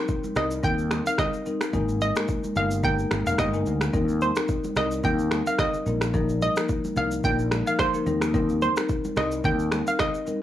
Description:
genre	afrobeats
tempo	109 BPM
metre	4/4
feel	swing 55% on 16ths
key	Eb major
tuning	A4 = 439 Hz
part	marimba with medium mallets	accompaniment	0.0-10.4 s	F3 to Bb4	-27 LUFS	left 4 dB	none
part	afro-pop drum kit	drums	0.1-10.4 s	finger snaps, kick drum, rim click, shaker	-29 LUFS	equal	overdrive
part	congas	percussion	0.2-10.4 s	none	-35 LUFS	right 3 dB	none
part	hollow square pluck	melody	0.4-10.4 s	C5 to G5	-28 LUFS	right 2 dB	chorus, tape echo
part	fretless electric bass	bass	0.4-9.8 s	F1 to Eb2	-27 LUFS	equal	none
room	digital ambience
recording	dry, gritty hardware recording, cassette tape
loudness	-22 LUFS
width	side -12 dB against mid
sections	0.0-10.4 A section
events	none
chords	0.0 Eb6; 1.7 Absus2; 3.9 Eb6; 5.9 Bbsus4; 8.1 Eb6

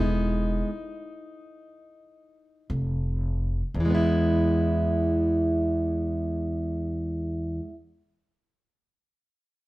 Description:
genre	acoustic country blues, solo or duo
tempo	free time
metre	none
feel	none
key	E major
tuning	A4 = 440 Hz
part	fingerpicked plugged-in steel-string acoustic guitar	melody	0.0-7.7 s	E2 to E4	-25 LUFS	equal	none
part	upright bass	bass	0.0-7.5 s	E1 to E2	-29 LUFS	equal	none
room	wet stone room reverb, RT60 1.0 s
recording	band playing live in one room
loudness	-24 LUFS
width	side -18 dB against mid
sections	0.0-3.7 A section; 3.7-8.1 B section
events	slowing down 0.0-3.7; stop 0.0-2.7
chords	0.0 E; 2.7 N.C.; 3.7 E

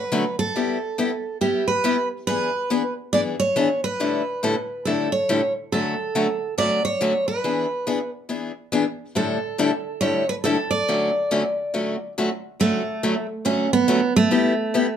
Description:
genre	jazz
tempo	140 BPM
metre	4/4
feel	swing 62% on 8ths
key	D major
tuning	A4 = 440 Hz
part	picked steel-string acoustic guitar	melody	0.0-15.0 s	A3 to D5	-22 LUFS	right 2 dB	none
part	picked acoustic archtop guitar	accompaniment	0.1-14.9 s	A2 to A4	-23 LUFS	left 3 dB	none
room	moderate club reverb, RT60 0.7 s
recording	minimal, uncompressed stereo recording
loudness	-20 LUFS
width	side -8 dB against mid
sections	0.0-12.6 A section; 12.6-15.0 A section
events	none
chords	0.0 Dmaj7; 0.5 G6; 2.3 E7; 4.0 A7sus4; 5.7 Dmaj7; 7.4 E7; 9.2 A7sus4; 10.9 Dmaj7; 14.3 G6

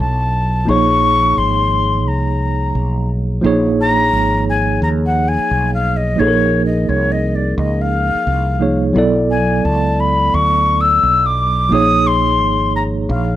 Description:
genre	hip hop, jazz-hop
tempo	87 BPM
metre	4/4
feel	swing 65% on 16ths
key	Bb minor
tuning	A4 = 440 Hz
part	mellow silver concert flute	melody	0.0-13.4 s	Db5 to E6	-16 LUFS	left 2 dB	none
part	mellow tine electric piano	accompaniment	0.0-13.4 s	F3 to D5	-18 LUFS	right 2 dB	medium stereo tremolo, plate reverb
part	mellow fretless electric bass	bass	0.0-13.4 s	Ab1 to Eb2	-18 LUFS	equal	none
room	moderate studio reverb, RT60 0.5 s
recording	none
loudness	-13 LUFS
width	side -13 dB against mid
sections	0.0-3.4 A section; 3.4-13.4 B section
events	flute solo 3.4-13.4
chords	0.0 B9sus4; 0.7 Bbm11; 9.0 Bm11; 11.7 Bbm11

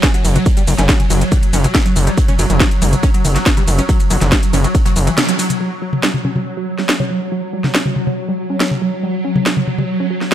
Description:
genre	driving peak-time techno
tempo	140 BPM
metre	4/4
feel	straight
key	unclear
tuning	A4 = 439 Hz
part	tight sequenced synth	riff	0.0-10.3 s	E3 to C#4	-23 LUFS	right 1 dB	chorus, overdrive, sidechain pumping, tape echo
part	swarming drone	drone	0.0-10.3 s	F#3	-21 LUFS	right 1 dB	built-in reverb, sidechain pumping
part	electronic kick drum	drums	0.0-4.8 s	none	-15 LUFS	equal	none
part	jazz brush drum kit	drums	0.0-5.5 s	hi-hat, snare drum	-32 LUFS	right 2 dB	none
part	techno drum kit	drums	0.0-10.3 s	hi-hat, ride cymbal, shaker, snare drum, toms	-18 LUFS	equal	sidechain pumping on hats, sidechain pumping on cymbals, sidechain pumping on perc, sidechain pumping on toms
part	gritty driven synth bass	bass	0.2-5.1 s	F#1	-14 LUFS	equal	sidechain pumping
room	light reverb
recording	dry, gritty hardware recording, transformer saturation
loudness	-13 LUFS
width	side -11 dB against mid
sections	0.0-5.6 A section; 5.6-10.3 B section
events	drop 0.0-5.6; kick drops out 5.2-5.6; band accent 5.2; filter sweep on synth arpeggio sound 5.6-10.3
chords	0.0 F#5

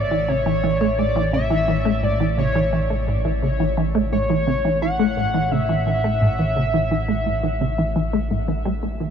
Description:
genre	ambient, sequencer-driven space music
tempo	86 BPM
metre	4/4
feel	straight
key	unclear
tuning	A4 = 438 Hz
part	pulse-width lead	melody	0.0-9.0 s	C#5 to F#5	-23 LUFS	left 1 dB	chorus, vintage 12-bit sampler grit, ping-pong delay
part	resonant blip pluck	riff	0.0-9.1 s	A2 to A3	-21 LUFS	right 1 dB	phaser, lush chorus, ping-pong delay
part	analog drone	bass	0.0-9.1 s	A1	-25 LUFS	equal	chorus
room	wet huge ambient reverb, RT60 7.4 s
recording	none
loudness	-18 LUFS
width	side -8 dB against mid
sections	0.0-9.1 A section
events	filter sweep on synth arpeggio sound 0.0-9.1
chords	0.0 A

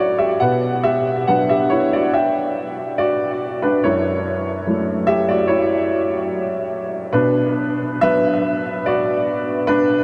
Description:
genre	neoclassical minimalist piano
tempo	71 BPM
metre	4/4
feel	rubato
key	B minor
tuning	A4 = 442 Hz
part	clear upright piano	solo	0.0-10.0 s	F#2 to G5	-19 LUFS	equal	delay
room	wet huge ambient reverb, RT60 9.0 s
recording	dreamy mix soaked in reverb, nothing above 10.8 kHz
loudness	-19 LUFS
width	mono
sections	0.0-10.0 A section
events	none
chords	0.4 Bm; 3.8 F#m7; 7.1 Bm

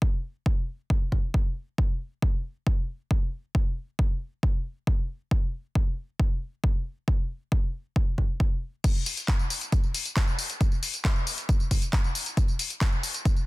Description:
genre	trance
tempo	136 BPM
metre	4/4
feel	straight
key	none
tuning	none
part	electronic kick drum	drums	0.0-13.3 s	none	-24 LUFS	equal	none
part	punchy analog drum machine	drums	8.8-13.5 s	crash cymbal, handclaps, hi-hat, tambourine	-30 LUFS	left 2 dB	none
room	little or no reverb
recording	dense, heavily limited modern master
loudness	-25 LUFS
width	side -21 dB against mid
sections	0.0-8.8 A section; 8.8-13.5 B section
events	drop 8.8-13.5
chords	none

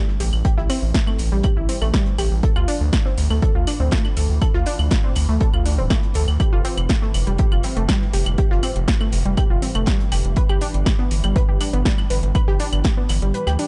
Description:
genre	melodic techno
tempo	121 BPM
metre	4/4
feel	straight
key	unclear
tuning	A4 = 441 Hz
part	analog pluck	arpeggios	0.0-13.7 s	G3 to B4	-28 LUFS	equal	chorus, sidechain pumping, tape echo
part	swarming drone	drone	0.4-13.7 s	A2 to E3	-38 LUFS	equal	built-in reverb, sidechain pumping
part	cloth-damped thuddy drum kit	drums	0.1-13.7 s	hi-hat, snare drum	-42 LUFS	equal	none
part	gritty driven synth bass	bass	0.2-13.6 s	D1 to D2	-22 LUFS	equal	sidechain pumping
part	deep house drum kit	drums	0.2-13.7 s	claves, hi-hat, snare drum	-30 LUFS	equal	overdrive
part	electronic kick drum	drums	0.4-12.9 s	none	-22 LUFS	equal	none
room	little or no reverb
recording	nothing above 11.0 kHz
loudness	-19 LUFS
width	mono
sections	0.0-13.7 A section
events	kick drops out 13.3-13.7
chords	0.0 Am7; 2.4 Dm7; 6.4 Fadd9; 10.4 G

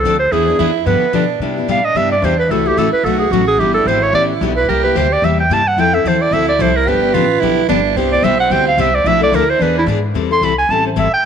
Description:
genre	acoustic string swing (jazz manouche)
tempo	220 BPM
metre	4/4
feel	swing 56% on 8ths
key	C major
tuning	A4 = 439 Hz
part	breathy clarinet	melody	0.0-11.3 s	E4 to C6	-15 LUFS	right 2 dB	none
part	growling soprano saxophone	second line	0.0-10.0 s	B3 to G4	-19 LUFS	right 12 dB	none
part	upright bass	bass	0.0-11.2 s	G1 to C3	-20 LUFS	left 1 dB	none
part	picked steel-string acoustic guitar	accompaniment	0.1-11.1 s	B2 to A4	-19 LUFS	left 13 dB	none
room	light reverb, studio reverb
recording	1960s-style stereo with parts hard left and right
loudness	-12 LUFS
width	side -7 dB against mid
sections	0.0-1.4 A section; 1.4-10.1 B section; 10.1-11.3 B section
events	clarinet solo 1.4-11.3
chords	0.3 E7; 0.9 G7; 1.4 Cmaj7; 2.5 F#m7b5; 3.0 B7; 3.6 Em7; 4.7 C7; 5.8 Fmaj7; 6.9 G7; 8.0 Cmaj7; 9.1 Bm7b5; 9.6 E7; 10.1 Am7

